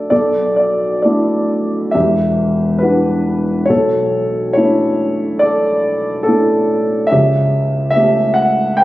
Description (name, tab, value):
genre	classical, lyrical solo piano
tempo	63-72 BPM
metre	4/4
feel	rubato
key	B minor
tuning	A4 = 440 Hz
part	dark concert grand piano	solo	0.0-8.8 s	E1 to G5	-12 LUFS	equal	none
room	moderate scoring stage reverb, RT60 2.1 s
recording	recorded on a phone in the room, club reverb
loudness	-12 LUFS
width	side -16 dB against mid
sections	0.1-8.8 A section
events	none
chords	0.1 Bm7; 1.9 Em9; 3.7 Bm11; 7.1 A9/C#